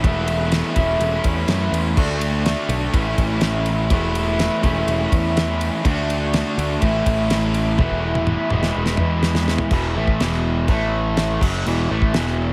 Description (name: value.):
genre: classic rock.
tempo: 124 BPM.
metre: 4/4.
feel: straight.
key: E mixolydian.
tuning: A4 = 438 Hz.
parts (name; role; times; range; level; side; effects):
raw garage guitar; riff; 0.0-12.5 s; E2 to F#4; -23 LUFS; equal; overdrive.
picked electric bass; bass; 0.0-12.5 s; E1 to F#2; -25 LUFS; equal; none.
damped 70s drum kit; drums; 0.0-12.3 s; crash cymbal, kick drum, ride cymbal, snare drum, toms; -25 LUFS; equal; none.
room: light reverb, small room ambience.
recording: none.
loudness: -20 LUFS.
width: mono.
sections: 0.0-9.7 A section; 9.7-12.5 B section.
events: drum fill 7.8-9.7.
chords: 0.0 Esus4; 0.8 A/E; 2.0 D; 2.9 A; 3.9 Esus4; 4.6 A/E; 5.8 D; 6.8 A; 7.8 Esus4; 8.5 E; 9.7 E5; 10.7 A5; 11.4 E5.